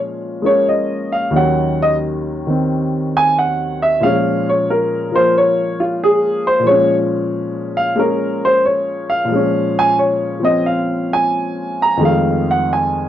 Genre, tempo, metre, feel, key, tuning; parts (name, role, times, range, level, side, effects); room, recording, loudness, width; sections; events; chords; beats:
solo jazz; 90 BPM; 4/4; swing 69% on 8ths, rubato; Bb minor; A4 = 440 Hz
warm upright piano; solo; 0.0-13.1 s; Eb2 to Bb5; -14 LUFS; equal
moderate studio reverb, RT60 0.7 s; worn, warbling old tape, cassette tape, warbly pitch drift; -14 LUFS; side -11 dB against mid
0.0-13.1 A section
upright piano solo 0.0-13.1
0.0 Bbm7; 1.3 Ebm7; 4.0 Bbm7; 12.0 F7#9
0.66 | 1.34 2.02 2.69 3.36 | 4.02 4.69 5.34 6.00 | 6.65 7.31 7.96 8.62 | 9.29 9.96 10.64 11.32 | 12.01 12.69